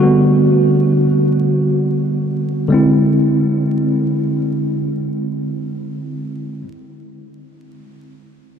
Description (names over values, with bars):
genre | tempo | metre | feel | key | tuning
hip hop | free time | none | none | unclear | A4 = 439 Hz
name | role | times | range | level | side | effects
mellow tine electric piano | accompaniment | 0.0-6.7 s | D3 to F#4 | -14 LUFS | equal | medium stereo tremolo
room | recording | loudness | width
wet huge ambient reverb, RT60 7.5 s | dreamy mix soaked in reverb, vinyl crackle | -13 LUFS | side -7 dB against mid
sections
0.0-2.7 A section; 2.7-5.5 B section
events
none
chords
0.0 Gmaj7; 2.7 Eaug7